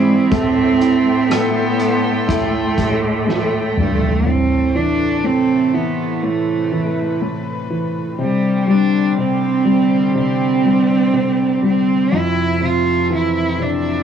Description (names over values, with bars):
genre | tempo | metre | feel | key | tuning
pop ballad | 61 BPM | 4/4 | straight | A minor | A4 = 440 Hz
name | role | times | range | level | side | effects
rich cello | melody | 0.0-14.0 s | G3 to F4 | -17 LUFS | right 4 dB | cassette tape, analog delay
warm concert grand piano | accompaniment | 0.0-14.0 s | F2 to E4 | -20 LUFS | left 4 dB | cassette tape
warm studio string section | sustained chords | 0.0-14.0 s | C3 to C6 | -24 LUFS | right 4 dB | cassette tape
rich studio cello section | bass | 0.0-4.2 s | G2 to A2 | -21 LUFS | right 2 dB | none
soft-mallet drum kit | drums | 0.3-4.2 s | hi-hat, kick drum, rim click, snare drum, toms | -22 LUFS | right 1 dB | cassette tape
room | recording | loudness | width
moderate small room reverb, RT60 0.5 s | home recording on cassette | -14 LUFS | side -8 dB against mid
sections
0.0-4.3 A section; 4.3-14.0 B section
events
drum fill 3.3-4.3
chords
0.3 Am7; 4.3 Am; 8.2 Csus2; 12.1 Fmaj7